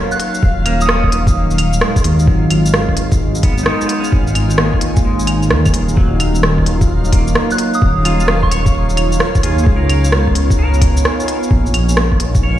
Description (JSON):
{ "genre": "future garage", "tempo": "130 BPM", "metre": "4/4", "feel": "swing 65% on 16ths", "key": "Eb minor", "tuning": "A4 = 440 Hz", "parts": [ { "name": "clean electric guitar", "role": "accompaniment", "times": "0.0-12.6 s", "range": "Eb3 to Db5", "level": "-23 LUFS", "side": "right 1 dB", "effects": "lush chorus, sidechain pumping, ping-pong delay" }, { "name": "warbly tape-like pad", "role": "sustained chords", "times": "0.0-12.6 s", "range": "Gb3 to Ab5", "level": "-21 LUFS", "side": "equal", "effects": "chorus, built-in reverb, sidechain pumping" }, { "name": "backwards swelling texture", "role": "texture", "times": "0.0-12.6 s", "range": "F4 to F5", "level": "-28 LUFS", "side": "equal", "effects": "built-in reverb" }, { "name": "soft synth bell", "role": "melody", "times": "0.1-1.4, 7.5-8.9 s", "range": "Db6 to Gb6", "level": "-22 LUFS", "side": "right 2 dB", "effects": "chorus, phaser, dub echo" }, { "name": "organic electronic drum kit", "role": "drums", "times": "0.1-12.4 s", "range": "claves, hi-hat, rim click, shaker", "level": "-19 LUFS", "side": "equal", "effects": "none" }, { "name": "dark detuned saw bass", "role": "bass", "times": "0.4-12.6 s", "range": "Eb1 to Eb2", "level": "-15 LUFS", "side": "equal", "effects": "tube saturation" }, { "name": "electronic kick drum", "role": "drums", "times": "0.4-12.4 s", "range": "none", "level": "-14 LUFS", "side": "equal", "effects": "none" } ], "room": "light reverb, digital ambience", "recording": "played on a big sound system in a bare room, large studio reverb", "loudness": "-11 LUFS", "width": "side -12 dB against mid", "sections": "0.0-12.6 A section", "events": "none", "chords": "0.0 Ebm9; 9.7 Dbsus2; 11.5 Bb7sus4", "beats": "| 0.43 0.90 1.36 1.82 | 2.28 2.74 3.20 3.66 | 4.13 4.59 5.05 5.51 | 5.97 6.43 6.89 7.36 | 7.82 8.28 8.74 9.20 | 9.66 10.13 10.59 11.05 | 11.51 11.97 12.43" }